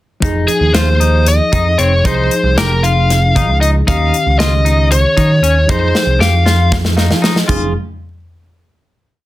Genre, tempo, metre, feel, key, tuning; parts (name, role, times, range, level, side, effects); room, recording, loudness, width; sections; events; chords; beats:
progressive instrumental, band music in an uneven meter; 231 BPM (eighths); 7/8; straight; F minor; A4 = 438 Hz
tine electric piano; accompaniment; 0.2-7.7 s; Eb3 to F5; -21 LUFS; right 1 dB; fast stereo tremolo
electric guitar at the edge of break-up; arpeggios; 0.2-7.7 s; C4 to G4; -21 LUFS; left 3 dB
overdriven picked electric bass; bass; 0.2-7.7 s; F1 to F3; -13 LUFS; equal
modern studio drum kit; drums; 0.2-7.6 s; hi-hat, kick drum, snare drum, splash cymbal, toms; -17 LUFS; equal; soft clipping on kick
biting lead guitar; melody; 0.5-6.7 s; Ab4 to F5; -15 LUFS; left 1 dB; overdrive
light reverb; dense, heavily limited modern master; -10 LUFS; side -16 dB against mid
0.2-7.5 A section; 7.5-9.3 final chord
drum fill 5.9-7.5; tine electric piano fill 6.7-7.5
0.2 Fm7; 3.9 Eb7; 5.7 Fm7
| 0.22 0.48 0.74 1.00 1.26 1.52 1.78 | 2.04 2.31 2.57 2.83 3.09 3.35 3.61 | 3.87 4.13 4.39 4.65 4.91 5.17 5.43 | 5.69 5.95 6.20 6.46 6.72 6.98 7.24 | 7.49